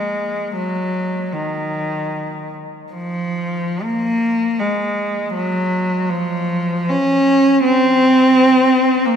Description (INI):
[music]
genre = classical, free, expressive piece for unaccompanied cello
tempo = free time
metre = none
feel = none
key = unclear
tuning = A4 = 436 Hz
[part]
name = rich cello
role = solo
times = 0.0-9.2 s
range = Eb3 to Db4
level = -15 LUFS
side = equal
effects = none
[sound]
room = wet cathedral reverb, RT60 4.9 s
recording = none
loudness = -15 LUFS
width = side -8 dB against mid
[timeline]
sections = 0.0-9.2 A section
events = none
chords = none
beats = free time